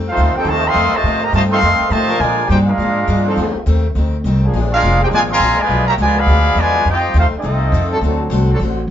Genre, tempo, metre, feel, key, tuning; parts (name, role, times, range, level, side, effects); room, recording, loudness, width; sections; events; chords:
jazz, big band swing; 207 BPM; 4/4; swing 61% on 8ths; A4 = 441 Hz
picked steel-string acoustic guitar; accompaniment; 0.0-8.8 s; F2 to F#4; -24 LUFS; left 4 dB
upright bass; bass; 0.0-8.9 s; F1 to Bb2; -16 LUFS; equal
clear trumpet section; melody; 0.1-8.2 s; C4 to C6; -16 LUFS; equal
muted trombone section; second line; 0.1-8.2 s; C3 to G4; -21 LUFS; right 2 dB
bright trombone section; sustained chords; 0.4-5.4, 7.9-8.6 s; F3 to Bb4; -22 LUFS; equal
moderate studio reverb, RT60 0.6 s; band playing live in one room, nothing above 7.5 kHz; -12 LUFS; side -10 dB against mid
0.0-8.9 A section
0.0 F7; 2.2 Bb7; 3.4 F7; 4.5 Bb7; 5.7 Bdim7; 6.9 F7; 8.0 D7